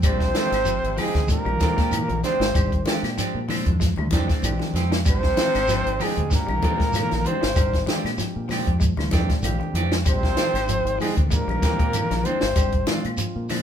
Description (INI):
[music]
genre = afrobeat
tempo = 96 BPM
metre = 4/4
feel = swing 55% on 16ths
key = Bb mixolydian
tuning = A4 = 440 Hz
[part]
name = clear trombone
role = second line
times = 0.0-12.9 s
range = Ab3 to C4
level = -32 LUFS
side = right 4 dB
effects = none
[part]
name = raspy baritone saxophone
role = second line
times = 0.0-12.9 s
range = Ab2 to C3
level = -34 LUFS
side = left 5 dB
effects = none
[part]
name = barky tine electric piano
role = accompaniment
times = 0.0-13.5 s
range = Ab3 to Ab5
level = -35 LUFS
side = right 4 dB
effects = overdrive
[part]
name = electric guitar at the edge of break-up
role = arpeggios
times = 0.0-13.6 s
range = F3 to Ab3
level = -32 LUFS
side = left 5 dB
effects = none
[part]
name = clean electric guitar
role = stabs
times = 0.0-13.6 s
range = Ab3 to G4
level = -30 LUFS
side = right 3 dB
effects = none
[part]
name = deep dub fingered electric bass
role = bass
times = 0.0-13.6 s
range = Ab1 to Bb2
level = -27 LUFS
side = equal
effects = none
[part]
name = compact cocktail drum kit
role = drums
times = 0.0-13.6 s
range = hi-hat, kick drum, snare drum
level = -24 LUFS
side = equal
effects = none
[part]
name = claves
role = percussion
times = 0.0-13.6 s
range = none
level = -36 LUFS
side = left 7 dB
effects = none
[part]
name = congas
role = percussion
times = 0.0-13.6 s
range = none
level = -30 LUFS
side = left 2 dB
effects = none
[part]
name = shekere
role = percussion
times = 0.0-13.6 s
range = none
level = -31 LUFS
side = right 3 dB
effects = none
[part]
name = breathy trumpet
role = melody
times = 0.1-12.9 s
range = Ab4 to C5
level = -26 LUFS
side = equal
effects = none
[sound]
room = moderate studio reverb, RT60 0.6 s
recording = band playing live in one room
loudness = -20 LUFS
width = side -9 dB against mid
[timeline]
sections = 0.0-13.6 A section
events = tine electric piano fill 8.8-10.1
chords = 0.0 Bb13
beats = | 0.03 0.66 1.29 1.92 | 2.55 3.18 3.81 4.43 | 5.06 5.69 6.31 6.94 | 7.57 8.19 8.82 9.44 | 10.06 10.69 11.31 11.93 | 12.56 13.18